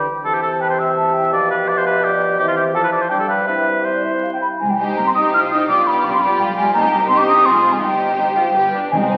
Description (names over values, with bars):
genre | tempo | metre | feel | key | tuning
quick classical-period movement for symphony orchestra | 156-174 BPM | 3/4 | rubato | C major, C minor from 4.6 s | A4 = 438 Hz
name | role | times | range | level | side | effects
mellow hollow concert flute | second line | 0.0-9.2 s | D5 to F6 | -19 LUFS | equal | none
warm oboe | second line | 0.0-4.4 s | F4 to E5 | -21 LUFS | equal | none
mellow bassoon | accompaniment | 0.0-4.4 s | B2 to G3 | -27 LUFS | equal | none
mellow French horn section | sustained chords | 0.0-4.4 s | E3 to G4 | -27 LUFS | equal | none
clear chamber double bass section | bass | 4.6-9.2 s | F1 to C2 | -34 LUFS | equal | none
rich studio cello section | bass | 4.6-9.2 s | G3 to F4 | -28 LUFS | equal | none
rich symphonic violin section | melody | 4.8-9.2 s | B4 to D5 | -33 LUFS | equal | none
clear chamber violin section | second line | 4.8-9.2 s | C4 to Ab4 | -27 LUFS | equal | none
rich chamber viola section | accompaniment | 4.8-9.2 s | D4 to G4 | -26 LUFS | equal | none
timpani | percussion | 8.9-9.2 s | C3 | -24 LUFS | equal | none
room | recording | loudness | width
wet concert hall reverb, RT60 1.8 s | very old 78 rpm record, vinyl crackle, lossy compression artefacts | -17 LUFS | mono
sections
0.0-4.6 A section; 4.6-9.2 B section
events
none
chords
0.2 C; 1.3 G7/B; 2.4 C; 2.7 F; 3.1 G; 3.5 C; 4.6 Cm; 5.7 G7/B; 6.7 Cm; 7.4 Fm; 7.8 Cm/G; 8.6 G